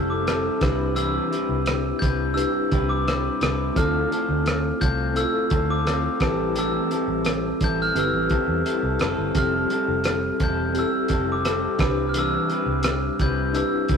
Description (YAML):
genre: indie pop, bedroom pop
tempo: 86 BPM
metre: 4/4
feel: straight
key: unclear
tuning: A4 = 441 Hz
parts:
  - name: glockenspiel with hard plastic mallets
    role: melody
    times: 0.0-14.0 s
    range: D6 to G6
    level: -27 LUFS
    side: left 1 dB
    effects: none
  - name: electric guitar through a small old amp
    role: accompaniment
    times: 0.0-14.0 s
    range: A2 to B4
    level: -27 LUFS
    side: left 2 dB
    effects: vibrato effect
  - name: mellow tine electric piano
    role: accompaniment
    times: 0.0-14.0 s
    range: C4 to B4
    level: -27 LUFS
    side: equal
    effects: medium stereo tremolo
  - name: vintage muted fingered electric bass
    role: bass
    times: 0.0-14.0 s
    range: E1 to E2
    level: -28 LUFS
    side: equal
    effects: none
  - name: cloth-damped thuddy drum kit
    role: drums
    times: 0.3-14.0 s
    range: hi-hat, kick drum, rim click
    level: -25 LUFS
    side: right 1 dB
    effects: none
room: moderate stone room reverb, RT60 1.1 s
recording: rough rehearsal-room recording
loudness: -20 LUFS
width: side -6 dB against mid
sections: 0.0-14.0 A section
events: none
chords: 0.0 Fmaj9; 0.6 Cmaj7; 3.8 Dm7; 6.2 Am7; 9.3 Fmaj9; 11.8 Cmaj7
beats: 0.27 | 0.96 1.66 2.36 3.06 | 3.76 4.46 5.16 5.85 | 6.55 7.25 7.95 8.65 | 9.35 10.04 10.74 11.44 | 12.14 12.84 13.54